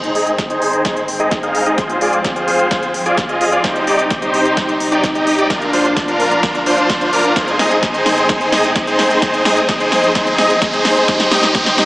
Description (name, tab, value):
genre	EDM, festival progressive house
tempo	129 BPM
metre	4/4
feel	straight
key	unclear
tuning	A4 = 441 Hz
part	dark studio string section	sustained chords	0.0-11.9 s	Ab2 to Eb4	-21 LUFS	left 1 dB	sidechain pumping, low-pass filter
part	big supersaw lead	riff	0.0-11.9 s	D4 to F5	-14 LUFS	equal	sidechain pumping, low-pass filter, analog delay
part	big-room dance drum kit	drums	0.0-11.9 s	hi-hat, snare drum	-20 LUFS	equal	overdrive
part	riser	sound effects	0.0-11.9 s	none	-25 LUFS	right 1 dB	none
part	electronic kick drum	drums	0.4-11.6 s	none	-25 LUFS	equal	overdrive
room	wet lush hall reverb, RT60 1.9 s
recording	dreamy mix soaked in reverb, small speaker sound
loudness	-12 LUFS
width	side -19 dB against mid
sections	0.0-11.9 A section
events	build-up 0.0-11.9; drum fill 0.0-11.9; filter sweep on supersaw synth 0.0-11.9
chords	0.0 Ab; 1.8 Fm/Ab; 3.6 Cm; 5.5 Bb; 7.4 Ab; 9.2 Fm/Ab; 11.1 Cm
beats	0.39 0.85 1.31 | 1.78 2.25 2.71 3.18 | 3.64 4.11 4.57 5.04 | 5.50 5.97 6.43 6.90 | 7.36 7.83 8.29 8.76 | 9.22 9.69 10.15 10.62 | 11.08 11.55